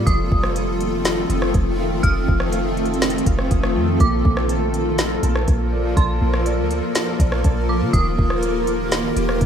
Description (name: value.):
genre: hip hop, atmospheric cloud-rap.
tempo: 122 BPM.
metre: 4/4.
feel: half-time.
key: unclear.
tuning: A4 = 440 Hz.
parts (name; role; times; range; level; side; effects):
dark detuned synth bell; melody; 0.0-8.4 s; C6 to F6; -27 LUFS; right 2 dB; chorus, tremolo, ping-pong delay.
granular cloud pad; sustained chords; 0.0-9.5 s; Eb3 to Bb4; -22 LUFS; equal; built-in reverb, sidechain pumping.
warbly lo-fi synth keys; arpeggios; 0.0-9.5 s; Eb3 to Eb6; -30 LUFS; right 3 dB; chorus, ping-pong delay.
clean 808-style bass; bass; 0.0-9.5 s; Eb1 to D3; -22 LUFS; equal; none.
smooth R&B drum kit; drums; 0.1-9.5 s; hi-hat, kick drum, rim click, snare drum; -22 LUFS; equal; none.
room: little or no reverb.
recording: rough home demo mix.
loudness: -17 LUFS.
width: side -8 dB against mid.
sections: 0.0-9.5 A section.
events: none.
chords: 0.1 F7; 4.0 Bbmaj7; 7.9 Ebmaj7.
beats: | 0.07 0.56 1.05 1.54 | 2.04 2.53 3.02 3.51 | 4.00 4.49 4.99 5.48 | 5.97 6.46 6.95 7.45 | 7.94 8.43 8.92 9.41.